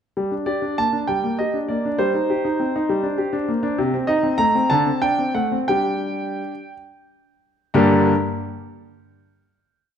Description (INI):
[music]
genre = classical-period piano sonatina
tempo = 57-68 BPM (dotted quarters)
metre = 6/8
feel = rubato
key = G minor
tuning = A4 = 439 Hz
[part]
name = warm concert grand piano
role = solo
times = 0.2-8.1 s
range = G2 to Bb5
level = -18 LUFS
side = equal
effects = none
[sound]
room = wet recital hall reverb, RT60 1.4 s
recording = dark, warm production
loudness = -18 LUFS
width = side -8 dB against mid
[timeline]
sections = 0.2-7.8 A section; 7.8-9.7 final chord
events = slowing down 2.9-7.8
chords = 0.2 Gm; 2.0 Cm/G; 2.9 Gm; 3.8 Adim/C; 4.7 D5; 5.7 G5; 7.8 Gm